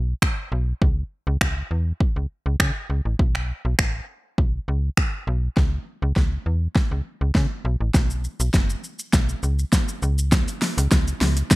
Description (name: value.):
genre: dance-pop.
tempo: 101 BPM.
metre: 4/4.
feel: straight.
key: unclear.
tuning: A4 = 440 Hz.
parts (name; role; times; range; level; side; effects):
slap-like FM bass; bass; 0.0-11.4 s; F#1 to C#3; -22 LUFS; equal; sidechain pumping.
deep house drum kit; drums; 0.2-11.6 s; finger snaps, hi-hat, kick drum, shaker, snare drum; -20 LUFS; equal; gated reverb.
room: little or no reverb.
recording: bright 1980s-style digital production.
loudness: -20 LUFS.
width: side -20 dB against mid.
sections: 0.0-5.6 A section; 5.6-11.6 B section.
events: build-up 5.6-11.6; drum fill 5.6-11.6.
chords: none.